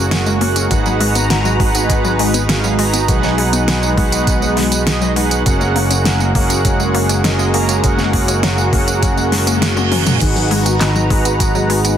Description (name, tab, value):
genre	synthwave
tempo	101 BPM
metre	4/4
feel	straight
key	F# major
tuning	A4 = 439 Hz
part	warm analog pad	sustained chords	0.0-12.0 s	G#3 to A#5	-20 LUFS	equal	chorus, phaser, vintage 12-bit sampler grit, sidechain pumping
part	wide unison pluck	arpeggios	0.0-12.0 s	D#3 to C#4	-23 LUFS	left 3 dB	tape echo
part	mellow synth brass	stabs	0.0-12.0 s	C#4 to A#5	-20 LUFS	right 4 dB	chorus, tape echo
part	overdriven picked electric bass	bass	0.0-12.0 s	F#1 to B1	-19 LUFS	equal	none
part	pop drum kit	drums	0.1-12.0 s	crash cymbal, handclaps, hi-hat, snare drum, tambourine, toms	-20 LUFS	equal	none
part	electronic kick drum	drums	0.7-11.5 s	none	-18 LUFS	equal	none
part	reverse cymbal	sound effects	9.3-10.2 s	none	-25 LUFS	right 6 dB	none
room	light reverb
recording	dense, heavily limited modern master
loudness	-12 LUFS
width	side -9 dB against mid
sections	0.0-12.0 A section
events	reverse cymbal 9.3-10.2; drum fill 9.8-10.2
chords	0.0 F#add9; 0.7 G#m7; 3.1 B6; 5.5 F#add9; 10.2 G#m7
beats	0.11 | 0.71 1.30 1.90 2.49 | 3.08 3.68 4.27 4.87 | 5.46 6.05 6.65 7.24 | 7.84 8.43 9.03 9.62 | 10.21 10.81 11.40